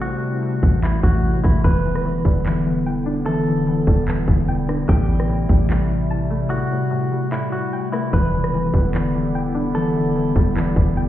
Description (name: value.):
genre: hip hop, atmospheric cloud-rap.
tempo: 148 BPM.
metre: 4/4.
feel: half-time.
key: E minor.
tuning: A4 = 440 Hz.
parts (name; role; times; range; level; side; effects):
clean electric guitar; melody; 0.0-10.5 s; E4 to B4; -28 LUFS; equal; low-pass filter, ping-pong delay.
warbly tape-like pad; sustained chords; 0.0-11.1 s; C3 to E4; -22 LUFS; left 1 dB; chorus, built-in reverb, sidechain pumping.
trap drum kit; drums; 0.0-11.1 s; crash cymbal, handclaps, hi-hat, kick drum, rim click; -20 LUFS; equal; none.
twinkling granular texture; texture; 0.0-1.6, 8.6-11.1 s; G3 to D5; -34 LUFS; equal; built-in reverb.
soft 808-style bass; bass; 0.6-11.1 s; D1 to A1; -22 LUFS; equal; none.
string-like resonator pluck; arpeggios; 1.6-11.1 s; A2 to A5; -26 LUFS; left 2 dB; chorus, low-pass filter, ping-pong delay.
room: little or no reverb.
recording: heard muffled through a wall, stone room reverb, EQ.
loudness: -17 LUFS.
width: side -12 dB against mid.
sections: 0.0-1.6 A section; 1.6-11.1 B section.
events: break 6.5-8.1.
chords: 0.0 Am7; 1.6 Em7; 4.9 Am7; 8.1 Em7.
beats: | 0.02 0.43 0.83 1.24 | 1.64 2.05 2.46 2.86 | 3.27 3.67 4.08 4.48 | 4.89 5.29 5.70 6.10 | 6.51 6.91 7.32 7.72 | 8.13 8.54 8.94 9.35 | 9.75 10.16 10.56 10.97.